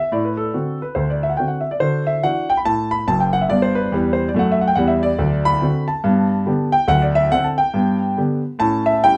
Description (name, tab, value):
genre	jazz, stride piano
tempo	142 BPM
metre	4/4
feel	swing 61% on 8ths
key	G major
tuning	A4 = 439 Hz
part	clear concert grand piano	solo	0.0-9.2 s	F#1 to B5	-18 LUFS	equal	none
room	moderate studio reverb, RT60 0.6 s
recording	none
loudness	-19 LUFS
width	mono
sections	0.0-9.2 A section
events	none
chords	0.1 D7/A; 1.8 Dadd9; 3.5 G; 5.2 D7; 6.0 G; 6.9 D7; 7.7 G; 8.6 A7